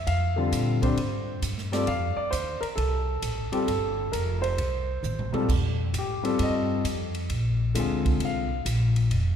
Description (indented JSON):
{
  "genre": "jazz piano trio",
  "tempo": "133 BPM",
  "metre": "4/4",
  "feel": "swing 67% on 8ths",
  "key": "F mixolydian",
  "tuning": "A4 = 438 Hz",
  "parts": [
    { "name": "warm concert grand piano", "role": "melody", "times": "0.0-8.6 s", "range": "D3 to F5", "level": "-28 LUFS", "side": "left 2 dB", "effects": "none" },
    { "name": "upright bass", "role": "bass", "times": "0.0-9.4 s", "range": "F1 to Bb2", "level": "-27 LUFS", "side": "equal", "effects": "none" },
    { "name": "swinging big-band drum kit", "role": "drums", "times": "0.1-9.2 s", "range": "crash cymbal, hi-hat, kick drum, ride cymbal, snare drum, toms", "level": "-32 LUFS", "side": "right 2 dB", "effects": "none" }
  ],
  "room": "moderate concert hall reverb, RT60 2.1 s",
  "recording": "recorded in a church or concert hall",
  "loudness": "-24 LUFS",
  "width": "side -8 dB against mid",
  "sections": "0.0-5.5 A section; 5.5-9.4 B section",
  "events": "drum fill 5.0-5.5; grand piano solo 5.5-9.4",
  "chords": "0.1 Bb9; 1.9 F7; 3.7 Fadd9; 4.6 C5; 5.5 F9; 7.3 Bb9"
}